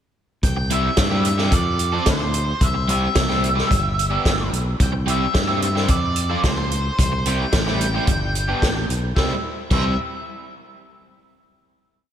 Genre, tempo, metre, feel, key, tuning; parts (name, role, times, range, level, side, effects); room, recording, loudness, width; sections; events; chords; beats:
indie rock; 110 BPM; 4/4; straight; C major; A4 = 439 Hz
octave-fuzz lead guitar; melody; 0.4-10.0 s; C5 to G5; -25 LUFS; equal; distortion, slapback echo
modern bright fingered electric bass; bass; 0.4-10.0 s; G1 to G2; -23 LUFS; equal
vintage drum kit; drums; 0.4-9.8 s; crash cymbal, hi-hat, kick drum, snare drum; -22 LUFS; equal
crunchy overdriven guitar; riff; 0.6-9.9 s; F3 to A4; -26 LUFS; equal; spring reverb, slapback echo
moderate lush hall reverb, RT60 2.5 s; big arena sound; -18 LUFS; side -9 dB against mid
0.4-9.2 verse; 9.2-11.3 final chord
0.4 C; 1.5 F; 2.6 C; 3.7 G; 4.8 C; 5.9 F; 7.0 C; 8.1 G; 9.2 C
| 0.43 0.97 1.52 2.07 | 2.61 3.16 3.71 4.25 | 4.80 5.35 5.89 6.44 | 6.98 7.53 8.07 8.62 | 9.16 9.70